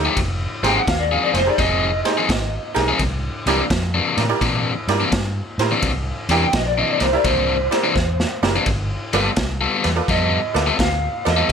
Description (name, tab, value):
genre	electric blues shuffle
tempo	85 BPM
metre	4/4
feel	swing 66% on 8ths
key	unclear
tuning	A4 = 445 Hz
part	tack piano	accompaniment	0.0-11.4 s	Eb4 to E5	-22 LUFS	right 5 dB	none
part	vintage muted fingered electric bass	bass	0.0-11.5 s	F1 to Bb2	-24 LUFS	equal	none
part	overdriven semi-hollow guitar	riff	0.1-11.5 s	C3 to A4	-21 LUFS	left 5 dB	none
part	raw garage drum kit	drums	0.2-11.5 s	kick drum, ride cymbal, snare drum	-23 LUFS	equal	none
part	electric slide guitar	melody	0.7-11.5 s	C5 to G5	-22 LUFS	equal	none
room	light reverb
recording	none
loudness	-17 LUFS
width	side -7 dB against mid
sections	0.0-11.5 A section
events	drum fill 8.0-8.7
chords	0.2 Fm7; 3.0 C9; 8.7 G9